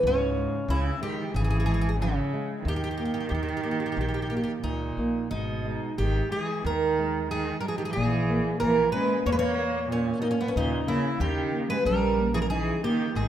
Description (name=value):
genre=fado-style ballad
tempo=92 BPM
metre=4/4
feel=rubato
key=unclear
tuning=A4 = 443 Hz
part: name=fingerpicked twelve-string acoustic guitar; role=melody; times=0.0-13.3 s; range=B3 to C#5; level=-29 LUFS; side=equal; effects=none
part: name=nylon-string guitar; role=accompaniment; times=0.0-13.3 s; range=A#2 to D#4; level=-31 LUFS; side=left 1 dB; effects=none
part: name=upright bass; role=bass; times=0.0-13.3 s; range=G#1 to E2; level=-30 LUFS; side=equal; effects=none
part: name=warm cello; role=second line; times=0.1-13.3 s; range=G#2 to A#3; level=-30 LUFS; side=right 4 dB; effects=none
room=moderate recital hall reverb, RT60 1.4 s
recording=minimal, uncompressed stereo recording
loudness=-24 LUFS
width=side -10 dB against mid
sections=0.0-13.3 A section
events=none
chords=0.0 C#m; 2.6 D#5; 5.3 G#m; 8.0 A#dim; 10.6 D#5